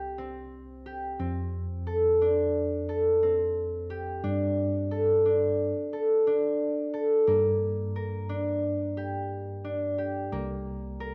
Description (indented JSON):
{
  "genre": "contemporary instrumental, chamber music in an uneven meter",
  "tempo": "177 BPM (eighths)",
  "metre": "9/8",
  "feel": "straight",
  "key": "unclear",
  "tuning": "A4 = 441 Hz",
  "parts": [
    { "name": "concert harp", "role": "arpeggios", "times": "0.0-11.1 s", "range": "Bb3 to Bb4", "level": "-29 LUFS", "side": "equal", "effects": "none" },
    { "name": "tine electric piano", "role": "bass", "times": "0.0-11.1 s", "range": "C2 to G2", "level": "-36 LUFS", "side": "equal", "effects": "none" }
  ],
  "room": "wet scoring stage reverb, RT60 1.6 s",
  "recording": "worn, warbling old tape, cassette tape, warbly pitch drift",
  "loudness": "-28 LUFS",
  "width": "mono",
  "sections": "0.0-7.3 A section; 7.3-11.1 B section",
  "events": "none",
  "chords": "0.0 C5; 1.2 F6; 4.2 Gsus2; 7.3 Gm; 10.3 C5"
}